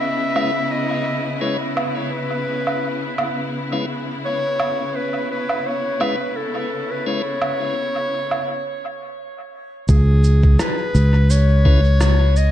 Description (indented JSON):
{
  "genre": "ambient dub",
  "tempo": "85 BPM",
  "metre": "4/4",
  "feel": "swing 55% on 16ths",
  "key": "C# minor",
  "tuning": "A4 = 441 Hz",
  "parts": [
    { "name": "bright clarinet", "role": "melody", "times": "0.0-12.5 s", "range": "G#4 to E5", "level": "-24 LUFS", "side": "left 1 dB", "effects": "dub echo" },
    { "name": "bright symphonic string section", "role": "sustained chords", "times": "0.0-8.5 s", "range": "C#3 to E4", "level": "-26 LUFS", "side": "left 1 dB", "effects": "none" },
    { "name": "tonewheel organ", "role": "stabs", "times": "0.4-7.2, 11.7-11.8 s", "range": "G#3 to B4", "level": "-29 LUFS", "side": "left 3 dB", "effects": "stopped rotary speaker, low-pass filter, dub echo" },
    { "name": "electronic woodblock, cabasa and rim click", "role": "drums", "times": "0.4-12.5 s", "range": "none", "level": "-27 LUFS", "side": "right 2 dB", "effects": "dub echo" },
    { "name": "fingered electric bass", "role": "bass", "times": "9.9-12.5 s", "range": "C#2", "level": "-13 LUFS", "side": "equal", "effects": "tube saturation" },
    { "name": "electronic kick drum", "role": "drums", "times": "9.9-11.8 s", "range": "none", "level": "-16 LUFS", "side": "equal", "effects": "none" }
  ],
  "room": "light reverb",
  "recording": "echo-heavy mix",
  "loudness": "-17 LUFS",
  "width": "side -12 dB against mid",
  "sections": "0.0-9.9 A section; 9.9-12.5 B section",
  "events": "break 8.5-9.9",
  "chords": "0.0 C#m7; 9.9 C#7(no3)"
}